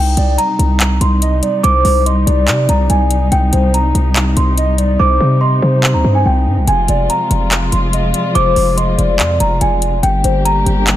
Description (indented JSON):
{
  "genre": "hip hop, trap",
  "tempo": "143 BPM",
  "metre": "4/4",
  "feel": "half-time",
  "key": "C minor",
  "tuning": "A4 = 440 Hz",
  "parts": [
    { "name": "celesta", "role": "melody", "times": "0.0-11.0 s", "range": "G5 to D6", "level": "-18 LUFS", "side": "right 2 dB", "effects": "tape echo" },
    { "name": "muted chamber string section", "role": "sustained chords", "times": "0.0-11.0 s", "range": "C3 to G4", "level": "-20 LUFS", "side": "equal", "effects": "none" },
    { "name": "hard-hitting 808-style bass", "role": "bass", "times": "0.0-11.0 s", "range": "F1 to C3", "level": "-14 LUFS", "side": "equal", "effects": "none" },
    { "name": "hollow clarinet-like synth lead", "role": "second line", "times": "0.2-10.4 s", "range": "C5 to Eb5", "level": "-20 LUFS", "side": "left 2 dB", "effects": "chorus, phaser, tape echo" },
    { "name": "trap drum kit", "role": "drums", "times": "0.2-11.0 s", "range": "handclaps, hi-hat", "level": "-18 LUFS", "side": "left 1 dB", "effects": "none" }
  ],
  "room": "digital ambience",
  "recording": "none",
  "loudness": "-11 LUFS",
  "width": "side -12 dB against mid",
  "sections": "0.0-11.0 A section",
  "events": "hi-hats muted 5.0-6.7",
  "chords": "0.0 Cm; 6.7 Fm; 10.0 Gm"
}